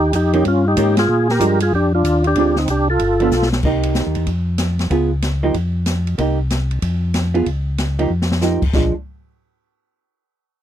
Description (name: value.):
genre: soul jazz organ trio.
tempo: 188 BPM.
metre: 4/4.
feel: swing 64% on 8ths.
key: Bb mixolydian.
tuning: A4 = 440 Hz.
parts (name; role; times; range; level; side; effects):
overdriven tonewheel organ; melody; 0.0-3.5 s; C4 to Bb4; -16 LUFS; equal; chorus vibrato, slow rotary speaker.
mellow tonewheel organ; bass; 0.0-8.9 s; G1 to Bb2; -19 LUFS; equal; slow rotary speaker.
open jazz drum kit; drums; 0.1-8.8 s; crash cymbal, hi-hat, kick drum, ride cymbal, snare drum; -24 LUFS; left 1 dB; none.
vintage hollow-body jazz guitar; accompaniment; 0.3-8.9 s; D3 to Ab4; -18 LUFS; right 3 dB; none.
room: little or no reverb.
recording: dry, close 1970s-style studio recording.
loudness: -15 LUFS.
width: side -10 dB against mid.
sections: 0.0-3.6 A section; 3.6-8.7 B section; 8.7-10.0 C section.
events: band accent 0.9; drum fill 3.3-3.6, 8.1-8.4.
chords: 0.0 Eb7; 1.1 Bb7; 2.4 Dm7b5; 3.0 G7; 3.6 Cm7; 4.3 N.C.; 4.9 Db7; 5.5 N.C.; 6.2 Cm7; 6.8 Fdim; 7.5 Db; 8.1 F9sus4; 8.7 Bb7.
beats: 0.13 0.45 0.77 | 1.09 1.41 1.72 2.04 | 2.36 2.68 3.00 3.31 | 3.63 3.95 4.27 4.59 | 4.91 5.23 5.55 5.87 | 6.18 6.50 6.82 7.14 | 7.46 7.78 8.10 8.42 | 8.74.